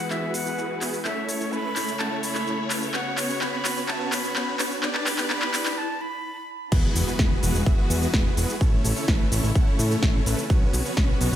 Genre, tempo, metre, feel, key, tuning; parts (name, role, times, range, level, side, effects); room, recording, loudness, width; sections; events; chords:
EDM, festival progressive house; 127 BPM; 4/4; straight; E major; A4 = 440 Hz
breathy concert flute; melody; 0.0-6.5 s; B4 to B5; -32 LUFS; equal; digital delay
dark chamber string section; sustained chords; 0.0-11.4 s; C#3 to D5; -32 LUFS; left 2 dB; sidechain pumping
supersaw chords; riff; 0.0-11.4 s; A3 to F#5; -29 LUFS; right 1 dB; vintage 12-bit sampler grit, sidechain pumping, low-pass filter, digital delay
riser and impact; sound effects; 1.1-8.6 s; -36 LUFS; left 1 dB
big-room dance drum kit; drums; 0.1-11.4 s; crash cymbal, handclaps, hi-hat, shaker, snare drum; -28 LUFS; equal
fat analog bass; bass; 6.7-11.4 s; E1 to A2; -26 LUFS; equal; sidechain pumping
electronic kick drum; drums; 6.7-11.1 s; -21 LUFS; equal
light reverb, digital ambience; high-pass filter; -22 LUFS; side -11 dB against mid
0.0-6.7 A section; 6.7-11.4 B section
build-up 0.0-6.7; drum fill 0.0-5.8; filter sweep on supersaw synth 0.0-6.7; break 5.8-6.7; drop 6.7-11.4; impact 6.7-8.6
0.0 Eadd9; 1.1 A; 2.9 Bsus2; 4.8 G; 6.7 Eadd9; 8.6 A; 10.5 Bsus2